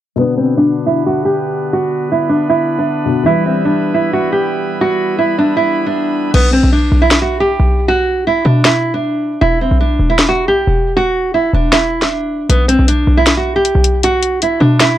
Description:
hip hop, trap; 156 BPM; 4/4; half-time; A4 = 442 Hz
nylon-string guitar; melody; 0.2-15.0 s; B3 to G4; -14 LUFS; right 1 dB; low-pass filter
dark concert grand piano; accompaniment; 0.2-6.4 s; B2 to B4; -21 LUFS; left 6 dB; low-pass filter
pipe organ, cornet; sustained chords; 0.2-6.3 s; D3 to B4; -22 LUFS; right 1 dB; low-pass filter
short 808-style bass; bass; 6.3-15.0 s; E1 to B2; -14 LUFS; equal
trap drum kit; drums; 6.3-14.9 s; crash cymbal, hi-hat, snare drum; -14 LUFS; left 1 dB; vintage 12-bit sampler grit
little or no reverb; -11 LUFS; side -12 dB against mid
0.2-6.3 A section; 6.3-15.0 B section
filter sweep 0.2-6.3; hi-hats muted 6.3-12.5
0.2 Bm; 3.3 Em; 6.3 Bm; 9.4 E5; 12.5 B5
| 0.19 0.57 0.96 1.34 | 1.73 2.11 2.50 2.88 | 3.26 3.65 4.03 4.42 | 4.80 5.19 5.57 5.96 | 6.34 6.73 7.11 7.50 | 7.88 8.26 8.65 9.03 | 9.42 9.80 10.19 10.57 | 10.96 11.34 11.73 12.11 | 12.49 12.88 13.26 13.65 | 14.03 14.42 14.80

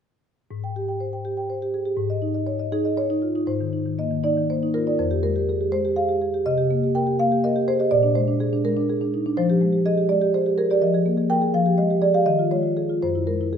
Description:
classical, contemporary piece for solo marimba; 82 BPM (dotted quarters); 6/8; straight; Ab lydian; A4 = 441 Hz
marimba with soft mallets; solo; 0.5-13.6 s; F2 to G5; -20 LUFS; equal
wet recital hall reverb, RT60 1.8 s; -20 LUFS; side -7 dB against mid
0.5-3.5 A section; 3.5-13.6 B section
0.5 Abmaj7; 2.0 Eb7sus4/Ab; 3.5 Abadd9; 5.0 Fmadd9; 6.5 Cm7; 7.9 Bb9; 9.4 Fmadd9; 10.8 Absus2/F; 11.5 Fmadd9; 12.3 Eb9sus4; 13.0 Gb9
| 0.51 1.25 | 1.98 2.72 | 3.49 4.24 | 4.98 5.72 | 6.46 7.19 | 7.91 8.63 | 9.37 10.09 | 10.81 11.54 | 12.27 13.02

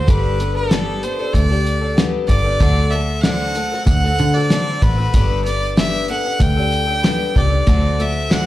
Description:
folk rock and heartland rock; 95 BPM; 4/4; straight; A4 = 437 Hz
bright fiddle; melody; 0.0-8.5 s; A4 to G5; -22 LUFS; right 1 dB; slapback echo
picked twelve-string acoustic guitar; accompaniment; 0.0-8.5 s; D3 to A4; -23 LUFS; left 4 dB; slapback echo
vintage muted picked electric bass; bass; 0.1-8.5 s; G1 to D3; -18 LUFS; equal
cloth-damped thuddy drum kit; drums; 0.1-8.5 s; hi-hat, kick drum, snare drum; -16 LUFS; equal
light reverb, small room ambience; live gig heard through the venue's PA, club reverb; -14 LUFS; side -15 dB against mid
0.0-8.5 A section
0.1 Gadd9; 2.6 D7; 5.1 Gadd9; 7.7 D7
| 0.09 0.72 1.35 1.98 | 2.62 3.25 3.88 4.51 | 5.15 5.78 6.41 7.05 | 7.68 8.31

